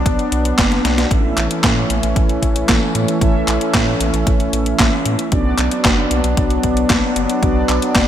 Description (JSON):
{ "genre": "italo disco", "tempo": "114 BPM", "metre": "4/4", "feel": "straight", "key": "unclear", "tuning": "A4 = 444 Hz", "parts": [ { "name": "warm analog pad", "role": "sustained chords", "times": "0.0-8.1 s", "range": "E3 to D4", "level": "-20 LUFS", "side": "equal", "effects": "chorus" }, { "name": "mellow synth brass", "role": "stabs", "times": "0.0-8.1 s", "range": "B3 to E5", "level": "-22 LUFS", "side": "right 1 dB", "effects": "chorus, ping-pong delay" }, { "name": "round analog bass", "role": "bass", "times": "0.0-8.1 s", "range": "F#1 to A2", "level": "-21 LUFS", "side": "equal", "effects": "none" }, { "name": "clean 12-bit digital drum machine", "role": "drums", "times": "0.1-8.1 s", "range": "handclaps, hi-hat, snare drum", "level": "-19 LUFS", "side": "equal", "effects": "overdrive, gated reverb" }, { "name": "electronic kick drum", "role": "drums", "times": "0.1-8.1 s", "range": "none", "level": "-18 LUFS", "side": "equal", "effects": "overdrive" } ], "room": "moderate plate reverb, RT60 2.6 s", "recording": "bright 1980s-style digital production", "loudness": "-14 LUFS", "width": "side -10 dB against mid", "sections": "0.0-8.1 A section", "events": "drum fill 0.7-1.1", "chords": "0.0 Bm; 1.1 A; 5.3 Bm", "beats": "0.06 0.58 | 1.11 1.64 2.16 2.69 | 3.22 3.74 4.27 4.79 | 5.32 5.85 6.37 6.90 | 7.43 7.95" }